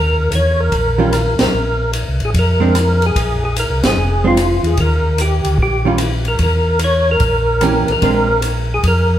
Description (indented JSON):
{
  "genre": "soul jazz organ trio",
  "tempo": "148 BPM",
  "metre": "4/4",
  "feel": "swing 66% on 8ths",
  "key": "unclear",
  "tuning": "A4 = 438 Hz",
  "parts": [
    { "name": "percussive tonewheel organ", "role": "melody", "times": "0.0-9.2 s", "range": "F4 to Db5", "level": "-17 LUFS", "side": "equal", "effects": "slow rotary speaker, chorus vibrato" },
    { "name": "mellow tonewheel organ", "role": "bass", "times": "0.0-9.2 s", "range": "F1 to F2", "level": "-16 LUFS", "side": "equal", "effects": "slow rotary speaker" },
    { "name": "open jazz drum kit", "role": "drums", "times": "0.3-9.0 s", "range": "hi-hat, kick drum, ride cymbal, rim click, snare drum", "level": "-21 LUFS", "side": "equal", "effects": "none" },
    { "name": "archtop guitar, miked and amplified", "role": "accompaniment", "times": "1.0-8.3 s", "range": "Eb3 to G4", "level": "-19 LUFS", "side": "right 3 dB", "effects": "none" }
  ],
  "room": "wet large studio reverb, RT60 1.5 s",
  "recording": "heard from further back in the room, faint mains hum",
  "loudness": "-13 LUFS",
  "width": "side -11 dB against mid",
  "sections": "0.0-9.2 A section",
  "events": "band accent 1.3, 3.8",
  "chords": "0.0 Eb7(no3); 1.5 Bb7sus2; 4.8 Eb; 6.4 Edim7; 8.0 Bb9"
}